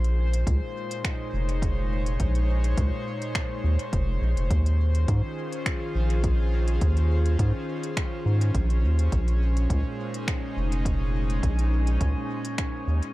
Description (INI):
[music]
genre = ambient dub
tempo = 104 BPM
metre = 4/4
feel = swing 53% on 16ths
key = Bb minor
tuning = A4 = 440 Hz
[part]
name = airy breathy pad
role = sustained chords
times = 0.0-13.1 s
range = Bb2 to Db5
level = -32 LUFS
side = left 1 dB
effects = chorus
[part]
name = round analog bass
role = bass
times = 0.0-13.0 s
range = F1 to Ab2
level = -23 LUFS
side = equal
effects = tube saturation
[part]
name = organic electronic drum kit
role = drums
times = 0.0-13.1 s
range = finger snaps, hi-hat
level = -34 LUFS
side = left 1 dB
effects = dub echo
[part]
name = electronic kick drum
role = drums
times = 0.5-12.7 s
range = none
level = -28 LUFS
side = equal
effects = none
[part]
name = drifting glass-harmonics texture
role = texture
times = 9.5-13.1 s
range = Db4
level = -38 LUFS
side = right 1 dB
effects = chorus, built-in reverb
[sound]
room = little or no reverb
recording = echo-heavy mix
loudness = -23 LUFS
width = side -18 dB against mid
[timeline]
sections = 0.0-13.1 A section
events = none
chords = 0.0 Bbm11; 4.5 Eb13sus4; 9.1 Bbm11